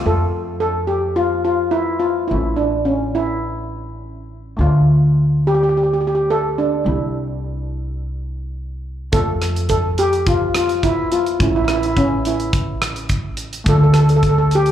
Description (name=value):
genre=calypso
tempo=106 BPM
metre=4/4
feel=straight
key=F major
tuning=A4 = 440 Hz
part: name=steel pan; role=accompaniment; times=0.0-14.7 s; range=G3 to F4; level=-29 LUFS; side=left 2 dB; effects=slapback echo
part: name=steel pan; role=melody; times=0.1-14.7 s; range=C#4 to A4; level=-18 LUFS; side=equal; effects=slapback echo
part: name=upright bass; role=bass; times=0.1-14.7 s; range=A1 to F2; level=-19 LUFS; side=equal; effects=none
part: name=modern studio drum kit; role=drums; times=9.1-14.7 s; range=hi-hat, kick drum, rim click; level=-21 LUFS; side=equal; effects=none
room=light reverb, small room ambience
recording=live gig heard through the venue's PA, club reverb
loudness=-15 LUFS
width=side -10 dB against mid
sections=0.1-14.7 A section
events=none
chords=0.1 F; 2.3 A; 4.6 Dm; 6.9 C; 9.1 F; 11.4 A; 13.7 Dm